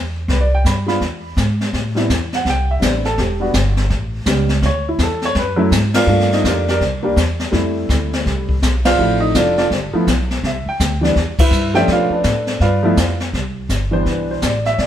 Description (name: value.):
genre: jazz piano trio.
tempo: 166 BPM.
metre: 4/4.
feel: swing 64% on 8ths.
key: A minor.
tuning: A4 = 440 Hz.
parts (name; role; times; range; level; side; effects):
upright bass; bass; 0.0-14.9 s; E1 to B2; -19 LUFS; equal; none.
warm baby grand piano; melody; 0.3-14.9 s; E3 to B5; -18 LUFS; right 1 dB; none.
jazz brush drum kit; drums; 0.3-14.9 s; brushed snare drum, crash cymbal, hi-hat, kick drum, ride cymbal, snare drum; -20 LUFS; left 2 dB; none.
room: moderate stone room reverb, RT60 1.0 s.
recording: band playing live in one room.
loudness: -14 LUFS.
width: side -10 dB against mid.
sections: 0.0-1.7 A section; 1.7-13.3 B section; 13.3-14.9 A section.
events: band accent 5.9, 8.8, 11.3.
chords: 0.0 Cmaj9; 1.0 E; 1.7 Am7; 3.2 Em; 3.9 A7; 4.6 Dmaj9; 6.1 Gm7; 6.8 C; 7.5 Fmaj9; 9.0 Dm7; 9.7 G; 10.4 Cmaj7; 11.9 Bm7b5; 12.6 G7; 13.3 Cmaj9.